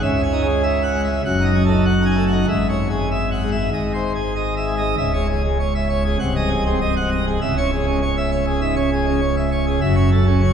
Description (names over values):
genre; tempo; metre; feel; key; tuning
classical, organ toccata; 99 BPM; 4/4; straight; C# minor; A4 = 439 Hz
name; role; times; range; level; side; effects
pipe organ, plenum; solo; 0.0-10.5 s; B#0 to G#5; -17 LUFS; equal; none
room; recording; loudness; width
wet church reverb, RT60 2.8 s; heard from further back in the room; -17 LUFS; side -8 dB against mid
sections
0.0-5.0 A section; 5.0-10.5 B section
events
none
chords
0.0 C#m; 1.3 D#dim/F#; 2.5 C#m/G#; 3.7 G#; 5.0 C#m; 6.2 G#7/B#; 7.4 C#m; 9.8 F#m7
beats
| 0.04 0.65 1.26 1.87 | 2.48 3.11 3.73 4.36 | 4.98 5.59 6.20 6.80 | 7.41 8.01 8.61 9.22 | 9.82 10.42